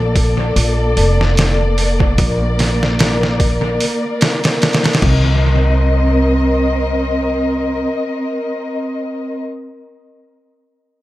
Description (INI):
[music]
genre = trip hop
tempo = 74 BPM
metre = 4/4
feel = swing 56% on 16ths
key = C dorian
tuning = A4 = 443 Hz
[part]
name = dark symphonic string section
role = sustained chords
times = 0.0-9.4 s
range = Bb3 to Eb5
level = -18 LUFS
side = left 1 dB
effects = none
[part]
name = upright bass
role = bass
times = 0.0-7.8 s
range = F1 to C2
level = -16 LUFS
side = equal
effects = tube saturation
[part]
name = trip hop sampler-style drum kit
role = drums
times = 0.2-5.2 s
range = crash cymbal, hi-hat, kick drum, snare drum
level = -16 LUFS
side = equal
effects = analog delay
[sound]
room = light reverb, studio reverb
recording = echo-heavy mix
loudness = -13 LUFS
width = side -16 dB against mid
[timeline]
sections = 0.0-5.4 A section; 5.4-8.7 B section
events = none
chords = 0.0 Bbmaj7; 5.0 Cm7